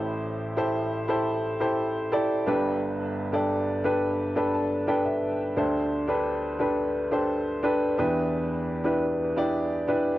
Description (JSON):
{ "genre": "pop", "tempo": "87 BPM", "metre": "4/4", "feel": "straight", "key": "G major", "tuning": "A4 = 439 Hz", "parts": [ { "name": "warm baby grand piano", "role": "solo", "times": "0.0-10.2 s", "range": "G1 to A5", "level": "-24 LUFS", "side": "equal", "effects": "cassette tape" } ], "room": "wet booth ambience, RT60 0.2 s", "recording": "home recording on cassette", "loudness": "-24 LUFS", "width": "side -15 dB against mid", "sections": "0.0-10.2 A section", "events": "grand piano fill 4.2-5.6", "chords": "0.0 Am7; 2.5 Gadd9; 5.6 D7sus4; 8.0 Em7", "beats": "| 0.05 0.74 1.43 2.12 | 2.81 3.50 4.19 4.88 | 5.57 6.26 6.95 7.64 | 8.33 9.02 9.71" }